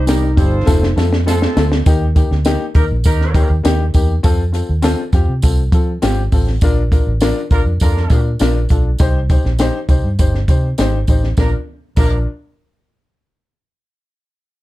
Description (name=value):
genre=uptempo 1960s-style soul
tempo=101 BPM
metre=4/4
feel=straight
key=Bb major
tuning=A4 = 439 Hz
part: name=vibraphone with hard mallets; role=melody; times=0.0-0.9 s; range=Eb4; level=-22 LUFS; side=equal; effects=none
part: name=mellow horn section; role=second line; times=0.0-3.5, 7.5-12.2 s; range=F3 to C5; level=-24 LUFS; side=right 3 dB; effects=none
part: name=vintage muted fingered electric bass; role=bass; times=0.0-12.2 s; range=F1 to F3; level=-16 LUFS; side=equal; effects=none
part: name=warm upright piano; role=accompaniment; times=0.1-12.3 s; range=G3 to C5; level=-21 LUFS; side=left 4 dB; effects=none
part: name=compact cocktail drum kit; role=drums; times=0.1-12.1 s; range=crash cymbal, hi-hat, kick drum, snare drum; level=-15 LUFS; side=equal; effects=none
part: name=tambourine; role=percussion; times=0.1-12.2 s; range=none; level=-34 LUFS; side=right 5 dB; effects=none
room=little or no reverb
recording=dark, warm production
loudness=-12 LUFS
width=side -16 dB against mid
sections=0.0-1.9 A section; 1.9-11.4 B section; 11.4-13.8 C section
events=drum fill 0.7-1.9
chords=0.0 Cm; 0.7 F; 1.9 Eb; 4.2 F; 6.6 Bb; 9.0 Cm; 11.4 Bb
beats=0.08 0.68 1.27 | 1.86 2.46 3.05 3.65 | 4.24 4.84 5.43 6.03 | 6.62 7.22 7.81 8.40 | 9.00 9.59 10.19 10.78 | 11.38 11.97